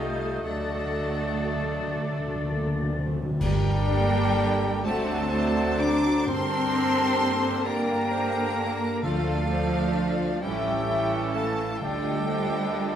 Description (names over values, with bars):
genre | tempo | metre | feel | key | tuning
classical, slow romantic movement for symphony orchestra | 40-45 BPM (dotted quarters) | 6/8 | rubato | G minor | A4 = 441 Hz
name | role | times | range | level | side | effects
rich chamber violin section | melody | 0.0-13.0 s | F5 to D6 | -34 LUFS | left 4 dB | none
dark cor anglais | second line | 0.0-13.0 s | F4 to Eb5 | -36 LUFS | right 1 dB | none
mellow hollow flute section | second line | 0.0-13.0 s | D5 to A6 | -32 LUFS | left 1 dB | none
rich chamber violin section | second line | 0.0-13.0 s | A3 to A4 | -36 LUFS | left 3 dB | none
warm clarinet | second line | 0.0-13.0 s | F4 to E5 | -36 LUFS | left 2 dB | none
clear symphonic viola section | accompaniment | 0.0-13.0 s | D3 to D4 | -34 LUFS | right 2 dB | none
mellow bassoon | accompaniment | 0.0-3.0 s | A3 | -37 LUFS | equal | none
warm French horn section | sustained chords | 0.0-13.0 s | F3 to A4 | -32 LUFS | left 4 dB | none
warm trumpet | stabs | 0.0-13.0 s | A4 to Eb5 | -35 LUFS | right 2 dB | none
rich studio cello section | bass | 0.0-13.0 s | F3 to A4 | -32 LUFS | right 3 dB | none
warm chamber double bass section | bass | 0.0-13.0 s | A1 to G2 | -32 LUFS | right 3 dB | none
cymbal swell, clash cymbals and concert bass drum | percussion | 0.4-5.3 s | none | -35 LUFS | equal | none
timpani | percussion | 0.4-13.0 s | G2 to D3 | -32 LUFS | left 1 dB | none
clear trombone section | sustained chords | 3.4-13.0 s | D3 to D4 | -36 LUFS | right 4 dB | none
room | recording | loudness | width
wet scoring stage reverb, RT60 1.8 s | none | -23 LUFS | side -9 dB against mid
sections
0.0-3.4 A section; 3.4-13.0 B section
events
timpani fill 0.5-3.4; band accent 3.4-4.4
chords
0.5 D; 3.4 Gm; 4.8 D7; 6.3 Gm; 9.0 Dm; 10.4 A7; 11.8 Dm